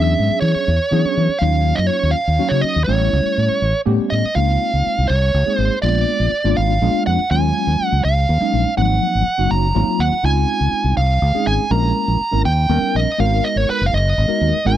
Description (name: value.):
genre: electric jazz fusion.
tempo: 82 BPM (dotted quarters).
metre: 6/8.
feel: straight.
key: G# dorian.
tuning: A4 = 439 Hz.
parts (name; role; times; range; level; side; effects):
smooth overdriven lead guitar; melody; 0.0-14.8 s; B4 to A#5; -19 LUFS; right 3 dB; none.
tine electric piano; accompaniment; 0.0-14.8 s; E#3 to A#4; -21 LUFS; left 1 dB; medium stereo tremolo, lush chorus.
fingered electric bass; bass; 0.0-14.8 s; F#1 to E3; -17 LUFS; equal; none.
room: light reverb.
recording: dry, close 1970s-style studio recording.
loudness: -15 LUFS.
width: side -12 dB against mid.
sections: 0.0-4.4 A section; 4.4-14.8 B section.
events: none.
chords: 0.0 E13; 1.4 D#m9; 2.9 A9; 4.4 C#maj13; 5.8 A#7b9; 7.3 D#m11; 8.8 G#13; 10.2 C#maj9; 11.7 A#m7b5; 12.4 D#7b13; 13.2 G#m9.